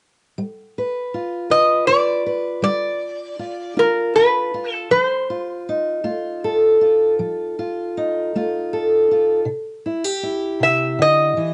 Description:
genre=acoustic country blues, solo or duo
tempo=53 BPM (dotted quarters)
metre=12/8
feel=straight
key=unclear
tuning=A4 = 439 Hz
part: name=fingerpicked steel-string acoustic guitar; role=accompaniment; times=0.4-11.5 s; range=C3 to B4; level=-22 LUFS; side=equal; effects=cassette tape
part: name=metal-body resonator slide guitar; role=melody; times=1.5-11.5 s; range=Bb4 to E5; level=-19 LUFS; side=equal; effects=cassette tape
room=light reverb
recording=home recording on cassette, nothing above 10.8 kHz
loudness=-19 LUFS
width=mono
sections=0.4-11.5 A section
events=none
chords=0.4 G7; 4.9 F7; 9.5 C

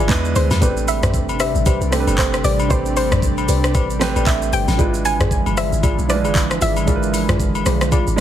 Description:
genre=amapiano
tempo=115 BPM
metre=4/4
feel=swing 58% on 16ths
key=A minor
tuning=A4 = 438 Hz
part: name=warm baby grand piano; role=accompaniment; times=0.0-8.2 s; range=F3 to G#5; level=-25 LUFS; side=right 7 dB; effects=none
part: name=airy breathy pad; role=sustained chords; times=0.0-8.2 s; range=C3 to D4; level=-25 LUFS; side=right 1 dB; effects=chorus, sidechain pumping
part: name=deep mellow chord stab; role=stabs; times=0.0-8.1 s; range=E4 to D5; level=-27 LUFS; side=left 2 dB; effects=chorus, ping-pong delay
part: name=deep log drum bass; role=bass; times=0.0-8.2 s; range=G1 to E2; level=-21 LUFS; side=equal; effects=none
part: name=smooth R&B drum kit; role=drums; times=0.1-8.2 s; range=handclaps, hi-hat, kick drum, rim click, shaker, snare drum, toms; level=-20 LUFS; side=equal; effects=none
part: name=soft round pluck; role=melody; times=0.4-7.6 s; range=C5 to G#5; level=-23 LUFS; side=equal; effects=chorus, ping-pong delay
part: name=agogo bells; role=percussion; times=0.5-8.1 s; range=none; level=-29 LUFS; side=left 9 dB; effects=none
room=digital ambience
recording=heavily compressed radio sound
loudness=-15 LUFS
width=side -11 dB against mid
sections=0.0-8.2 A section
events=none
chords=0.1 E7; 0.6 Am11; 4.8 E7b9

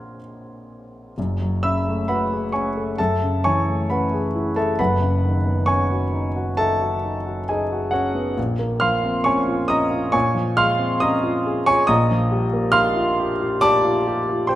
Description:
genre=classical, impressionist solo piano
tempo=67 BPM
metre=4/4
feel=rubato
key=unclear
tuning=A4 = 440 Hz
part: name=clear grand piano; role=solo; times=0.0-14.6 s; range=F#1 to Ab6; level=-18 LUFS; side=equal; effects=none
room=wet recital hall reverb, RT60 1.6 s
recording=none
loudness=-18 LUFS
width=side -14 dB against mid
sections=0.0-1.2 A section; 1.2-14.6 B section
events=none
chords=0.0 Bbm9; 1.2 Amaj9/F#; 4.8 Badd9/F#; 8.4 C#maj9/A#; 11.9 D#add9/A#

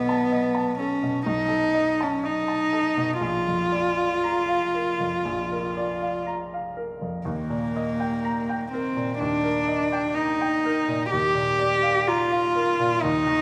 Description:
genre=classical, romantic duo for cello and grand piano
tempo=58-66 BPM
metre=4/4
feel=rubato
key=unclear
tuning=A4 = 441 Hz
part: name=warm cello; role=melody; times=0.0-13.4 s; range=Bb3 to G4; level=-25 LUFS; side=equal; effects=none
part: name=bright baby grand piano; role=accompaniment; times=0.0-13.4 s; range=Bb1 to Bb5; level=-31 LUFS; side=equal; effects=none
room=moderate scoring stage reverb, RT60 1.6 s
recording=none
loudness=-24 LUFS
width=mono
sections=0.0-13.4 A section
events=none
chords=0.0 B7; 3.2 Bb; 7.3 Eb; 11.1 Bb/Eb

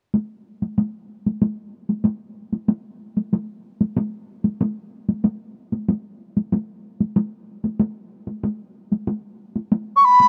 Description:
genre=japanese traditional, taiko drum ensemble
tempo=94 BPM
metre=4/4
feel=straight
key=unclear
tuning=A4 = 443 Hz
part: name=taiko ensemble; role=percussion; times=0.1-10.3 s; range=none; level=-23 LUFS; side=equal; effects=none
part: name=mellow hollow large dizi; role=melody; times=10.0-10.3 s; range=B5 to C#6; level=-12 LUFS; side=equal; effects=none
room=light reverb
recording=none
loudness=-24 LUFS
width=mono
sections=0.1-10.3 A section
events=none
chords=none

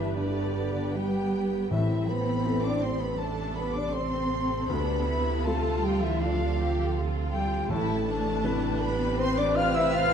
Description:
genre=cinematic, emotional film score for orchestra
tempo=80 BPM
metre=4/4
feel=rubato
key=A minor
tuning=A4 = 439 Hz
part: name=clear symphonic violin section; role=melody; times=0.0-10.1 s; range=D5 to F6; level=-40 LUFS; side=left 1 dB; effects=none
part: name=concert flute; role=second line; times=0.0-10.1 s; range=D5 to F6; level=-36 LUFS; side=left 2 dB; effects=none
part: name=warm symphonic violin section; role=second line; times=0.0-10.1 s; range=A3 to G4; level=-34 LUFS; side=left 3 dB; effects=none
part: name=felt-muted upright piano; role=accompaniment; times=0.0-10.1 s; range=D2 to B4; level=-36 LUFS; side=left 4 dB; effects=none
part: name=rich symphonic viola section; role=accompaniment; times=0.0-10.1 s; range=C3 to B4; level=-36 LUFS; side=right 1 dB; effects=none
part: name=mellow French horn section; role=sustained chords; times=0.0-10.1 s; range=D4 to F5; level=-31 LUFS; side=left 2 dB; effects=none
part: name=rich symphonic double bass section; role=bass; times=0.0-10.1 s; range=G1 to D2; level=-31 LUFS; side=right 4 dB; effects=none
part: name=warm symphonic cello section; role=bass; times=0.0-10.1 s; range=D3 to F4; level=-33 LUFS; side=right 2 dB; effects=none
part: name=timpani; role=percussion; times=1.7-2.8, 7.7-8.8 s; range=A2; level=-34 LUFS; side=equal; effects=none
room=moderate scoring stage reverb, RT60 1.7 s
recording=dark, warm production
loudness=-25 LUFS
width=side -8 dB against mid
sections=0.0-10.1 A section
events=none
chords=0.0 G; 1.7 Amadd9; 4.7 Dm7; 7.7 Amadd9

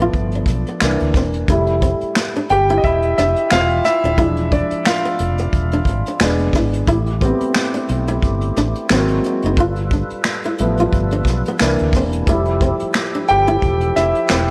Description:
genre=R&B, neo-soul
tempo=89 BPM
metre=4/4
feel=swing 56% on 16ths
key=unclear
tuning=A4 = 440 Hz
part: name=flamenco guitar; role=second line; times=0.0-14.4 s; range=B3 to F4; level=-25 LUFS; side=equal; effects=none
part: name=warm grand piano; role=accompaniment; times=0.0-14.5 s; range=E3 to G5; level=-21 LUFS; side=equal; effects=none
part: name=fretless electric bass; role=bass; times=0.0-14.5 s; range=D#1 to D2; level=-23 LUFS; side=equal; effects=none
part: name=vintage brush drum kit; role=drums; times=0.1-14.5 s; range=finger snaps, hi-hat, kick drum, snare drum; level=-22 LUFS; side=equal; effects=none
part: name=tonewheel organ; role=sustained chords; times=6.9-14.5 s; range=C3 to B4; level=-28 LUFS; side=equal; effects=slow rotary speaker, overdrive, chorus vibrato
room=light reverb, studio reverb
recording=lossy compression artefacts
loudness=-17 LUFS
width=mono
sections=0.0-14.5 A section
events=grand piano solo 0.0-14.5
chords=0.0 G9; 0.8 C9; 1.5 Fmaj9; 4.2 E7b9; 6.9 Am9; 8.9 G#9; 9.6 G9; 11.6 C9; 12.3 Fmaj9

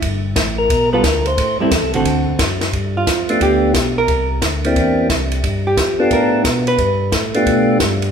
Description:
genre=soul jazz organ trio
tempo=178 BPM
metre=4/4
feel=swing 65% on 8ths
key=G mixolydian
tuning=A4 = 440 Hz
part: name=tonewheel organ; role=bass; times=0.0-8.1 s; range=G1 to B2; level=-20 LUFS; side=equal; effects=overdrive, slow rotary speaker
part: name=compact cocktail drum kit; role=drums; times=0.0-8.1 s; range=hi-hat, kick drum, ride cymbal, snare drum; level=-20 LUFS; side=equal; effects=none
part: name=percussive tonewheel organ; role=melody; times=0.6-7.8 s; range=A3 to C5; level=-17 LUFS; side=equal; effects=slow rotary speaker
part: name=hollow-body jazz guitar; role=accompaniment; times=0.9-7.1 s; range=D3 to B4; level=-19 LUFS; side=right 2 dB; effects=none
room=wet large studio reverb, RT60 1.3 s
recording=band playing live in one room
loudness=-14 LUFS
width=side -7 dB against mid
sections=0.0-2.7 A section; 2.7-8.1 A section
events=tonewheel organ solo 0.0-2.7; hollow-body jazz guitar solo 2.7-8.1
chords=0.0 Gadd9; 1.4 Am7; 2.1 D7; 2.7 G9; 4.1 C9; 5.4 G9

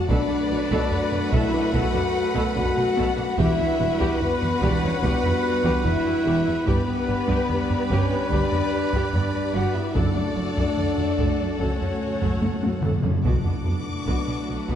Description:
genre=cinematic, epic orchestral film score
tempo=73 BPM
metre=4/4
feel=straight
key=B minor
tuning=A4 = 438 Hz
part: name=rich studio violin section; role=melody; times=0.0-14.8 s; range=B4 to D6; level=-37 LUFS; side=left 4 dB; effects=none
part: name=clear symphonic violin section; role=second line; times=0.0-14.8 s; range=A4 to B5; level=-35 LUFS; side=left 3 dB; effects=none
part: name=dark symphonic viola section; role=accompaniment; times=0.0-14.8 s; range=B3 to C#5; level=-32 LUFS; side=equal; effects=none
part: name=clear symphonic string section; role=sustained chords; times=0.0-14.8 s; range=G3 to F#5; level=-33 LUFS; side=left 1 dB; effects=none
part: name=mellow French horn section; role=sustained chords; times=0.0-14.8 s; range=B3 to F#4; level=-27 LUFS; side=left 3 dB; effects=none
part: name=hollow concert flute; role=second line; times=0.1-12.8 s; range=B4 to F#5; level=-32 LUFS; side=left 2 dB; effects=none
part: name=dark trombone section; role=sustained chords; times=0.1-14.8 s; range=F#2 to F#4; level=-32 LUFS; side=right 3 dB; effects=none
part: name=bright trumpet section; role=stabs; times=0.1-12.9 s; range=A4 to B4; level=-33 LUFS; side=equal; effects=none
part: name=warm symphonic cello section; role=bass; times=0.1-14.8 s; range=E2 to B2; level=-30 LUFS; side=right 2 dB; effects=none
part: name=warm symphonic double bass section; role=bass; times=0.1-14.6 s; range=E1 to B1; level=-28 LUFS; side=right 3 dB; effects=none
part: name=taiko ensemble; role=drums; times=0.1-14.8 s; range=none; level=-27 LUFS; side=equal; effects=none
part: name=timpani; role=percussion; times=9.9-14.4 s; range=F#2 to B2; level=-31 LUFS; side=left 1 dB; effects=none
room=wet scoring stage reverb, RT60 1.9 s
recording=dark, warm production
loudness=-20 LUFS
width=side -9 dB against mid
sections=0.0-13.2 A section; 13.2-14.8 B section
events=timpani fill 11.6-13.2; drum fill 12.4-13.2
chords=0.1 Bm7; 3.4 Emadd9; 6.7 G; 10.0 D/F#; 11.6 F#m; 13.2 Bm7

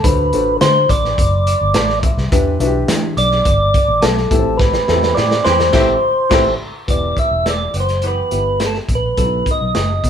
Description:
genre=uptempo 1960s-style soul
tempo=105 BPM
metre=4/4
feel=straight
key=E minor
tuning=A4 = 440 Hz
part: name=percussive tonewheel organ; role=melody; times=0.0-10.1 s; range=A4 to E5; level=-16 LUFS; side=equal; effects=slow rotary speaker
part: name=dark upright piano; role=accompaniment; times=0.0-10.1 s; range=A2 to A5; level=-21 LUFS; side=left 2 dB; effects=none
part: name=vintage muted fingered electric bass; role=bass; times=0.0-10.1 s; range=E1 to E3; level=-20 LUFS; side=equal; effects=none
part: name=crunchy breakbeat drum kit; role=drums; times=0.0-10.1 s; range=crash cymbal, hi-hat, kick drum, snare drum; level=-18 LUFS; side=equal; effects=none
part: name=glockenspiel with soft plastic mallets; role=second line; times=0.1-5.7 s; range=A5 to D6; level=-30 LUFS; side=left 2 dB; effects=none
part: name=mellow horn section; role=second line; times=5.1-10.1 s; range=D#3 to G4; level=-24 LUFS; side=right 1 dB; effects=none
room=moderate studio reverb, RT60 0.9 s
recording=band playing live in one room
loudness=-13 LUFS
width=side -8 dB against mid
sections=0.0-6.9 A section; 6.9-10.1 B section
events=upright piano fill 1.5-2.3; drum fill 4.6-6.9; band accent 4.6-6.9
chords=0.0 D7; 2.3 Em7; 4.3 Am7; 6.9 Em; 9.2 B7

